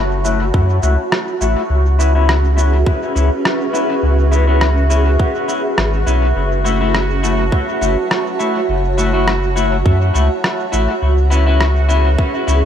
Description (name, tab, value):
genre	ambient dub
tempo	103 BPM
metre	4/4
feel	swing 55% on 16ths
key	F# minor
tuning	A4 = 439 Hz
part	granular cloud pad	sustained chords	0.0-12.7 s	C#4 to A5	-22 LUFS	right 2 dB	built-in reverb
part	warm sub bass	bass	0.0-12.6 s	F#1 to F#2	-14 LUFS	equal	none
part	bubbling stepped-filter texture	texture	0.0-12.7 s	F#4	-23 LUFS	right 4 dB	chorus, built-in reverb
part	clean electric guitar	stabs	0.2-12.6 s	A3 to F#4	-20 LUFS	left 5 dB	wide subtle chorus, low-pass filter, dub echo
part	electronic shaker and rim click	drums	0.2-12.6 s	none	-23 LUFS	right 1 dB	overdrive, studio reverb, dub echo
part	electronic kick drum	drums	0.5-12.3 s	none	-16 LUFS	equal	studio reverb
room	light reverb, digital ambience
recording	none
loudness	-13 LUFS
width	side -9 dB against mid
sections	0.0-12.7 A section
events	filter sweep on clean electric guitar 0.0-12.7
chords	0.0 F#m7; 1.7 C#m7; 6.4 F#m7; 11.0 C#m7